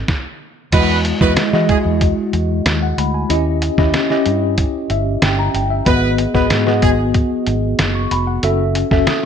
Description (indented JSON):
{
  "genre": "polished 1980s jazz-funk pop",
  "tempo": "94 BPM",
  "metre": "4/4",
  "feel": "straight",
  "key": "E major",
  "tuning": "A4 = 441 Hz",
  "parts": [
    { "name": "mellow tine electric piano", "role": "accompaniment", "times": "0.0-9.3 s", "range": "G#3 to D#6", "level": "-17 LUFS", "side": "left 2 dB", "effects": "medium stereo tremolo, wide subtle chorus" },
    { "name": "vintage muted fingered electric bass", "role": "bass", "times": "0.0-9.0 s", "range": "F1 to E3", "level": "-19 LUFS", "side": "right 1 dB", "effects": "none" },
    { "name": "lo-fi sampler-style drum kit", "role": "drums", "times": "0.1-9.3 s", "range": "crash cymbal, hi-hat, kick drum, snare drum", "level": "-18 LUFS", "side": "equal", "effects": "none" },
    { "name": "warm horn section", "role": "second line", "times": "0.7-1.8, 5.9-6.9 s", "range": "G#3 to B4", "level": "-21 LUFS", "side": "right 4 dB", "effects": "none" }
  ],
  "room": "light reverb, digital ambience",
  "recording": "bright 1980s-style digital production",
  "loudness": "-14 LUFS",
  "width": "side -8 dB against mid",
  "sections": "0.7-9.3 A section",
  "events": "none",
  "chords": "0.0 B7b9; 0.7 Emaj9; 3.3 D#7b9; 5.9 G#m7; 8.4 F#m7"
}